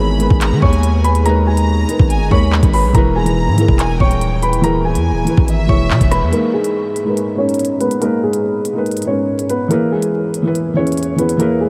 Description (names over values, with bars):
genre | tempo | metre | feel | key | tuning
hip hop, drill | 142 BPM | 4/4 | half-time | G# minor | A4 = 440 Hz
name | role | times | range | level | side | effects
dark concert grand piano | melody | 0.0-11.7 s | G#3 to C#6 | -21 LUFS | equal | low-pass filter
warm studio violin section | second line | 0.0-6.3 s | E5 to B5 | -28 LUFS | equal | analog delay
felt-muted upright piano | accompaniment | 0.0-11.7 s | E3 to C#5 | -22 LUFS | equal | low-pass filter
deep dark ambient pad | sustained chords | 0.0-11.7 s | E2 to A#5 | -28 LUFS | equal | chorus, built-in reverb, low-pass filter
distorted 808-style bass | bass | 0.0-6.3 s | D#1 to D#3 | -18 LUFS | equal | distortion
drill drum kit | drums | 0.2-11.5 s | handclaps, hi-hat, kick drum, rim click | -19 LUFS | equal | none
room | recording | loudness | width
moderate huge ambient reverb, RT60 5.0 s | dreamy mix soaked in reverb, vinyl crackle | -15 LUFS | mono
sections
0.0-6.3 A section; 6.3-11.7 B section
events
filter sweep 6.3-11.7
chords
0.0 G#madd9; 2.9 E; 6.3 G#madd9; 9.7 E